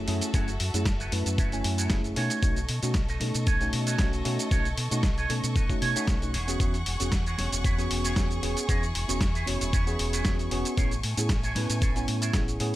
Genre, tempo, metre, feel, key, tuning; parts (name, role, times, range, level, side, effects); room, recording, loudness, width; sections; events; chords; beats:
nu-disco, nu disco; 115 BPM; 4/4; swing 53% on 16ths; E major; A4 = 440 Hz
mellow tine electric piano; accompaniment; 0.0-12.8 s; A3 to G#5; -32 LUFS; equal; wide subtle chorus, sidechain pumping, analog delay
dark studio violin section; sustained chords; 0.0-12.8 s; A3 to C#6; -37 LUFS; equal; sidechain pumping
fingered electric bass with an envelope filter; bass; 0.0-12.7 s; E1 to B2; -30 LUFS; equal
electric guitar with an envelope filter; riff; 0.1-12.6 s; D#4 to G#5; -35 LUFS; right 5 dB; wide subtle chorus
dusty soul sampler-style drum kit; drums; 0.1-12.7 s; hi-hat, shaker, snare drum; -32 LUFS; equal; overdrive
electronic kick drum; drums; 0.3-12.5 s; -27 LUFS; equal; overdrive
little or no reverb; -24 LUFS; side -15 dB against mid
0.0-12.8 A section
clean electric guitar fill 5.6-6.6
0.0 F#m7; 2.2 B9; 6.3 E69; 10.8 Amaj7
| 0.34 0.86 1.38 1.91 | 2.43 2.95 3.47 3.99 | 4.51 5.04 5.56 6.08 | 6.60 7.12 7.64 8.17 | 8.69 9.21 9.73 10.25 | 10.78 11.30 11.82 12.34